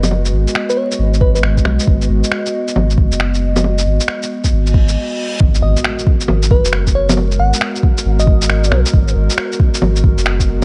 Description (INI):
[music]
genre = future garage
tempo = 136 BPM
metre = 4/4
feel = swing 65% on 16ths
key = G# minor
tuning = A4 = 439 Hz
[part]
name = warbly tape-like pad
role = sustained chords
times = 0.0-10.6 s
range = G#3 to D#5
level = -24 LUFS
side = equal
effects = chorus, built-in reverb, sidechain pumping
[part]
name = warm sub bass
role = bass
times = 0.0-10.6 s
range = F#1 to B1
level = -18 LUFS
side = equal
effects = sidechain pumping
[part]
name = electronic bongos, shaker and finger snaps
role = drums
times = 0.0-10.5 s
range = none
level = -21 LUFS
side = equal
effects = small room ambience
[part]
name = bell-like FM electric piano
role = melody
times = 0.7-1.4, 5.6-8.8 s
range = B4 to F#5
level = -24 LUFS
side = equal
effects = chorus, dub echo
[part]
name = electronic kick drum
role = drums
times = 1.2-10.5 s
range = none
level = -16 LUFS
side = equal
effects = overdrive, small room ambience
[part]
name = reverse cymbal and impact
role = sound effects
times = 4.7-7.2 s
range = none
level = -29 LUFS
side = equal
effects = none
[sound]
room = light reverb, digital ambience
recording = vinyl crackle, nothing above 10.8 kHz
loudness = -15 LUFS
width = mono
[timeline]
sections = 0.0-5.4 A section; 5.4-10.6 B section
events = reverse cymbal 4.7-5.4; break 5.0-5.4; impact 5.4-7.2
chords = 0.0 G#m7; 5.4 G#m9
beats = | 0.11 0.55 0.99 1.44 | 1.88 2.32 2.76 3.20 | 3.64 4.08 4.52 4.96 | 5.41 5.85 6.29 6.73 | 7.17 7.61 8.05 8.49 | 8.94 9.38 9.82 10.26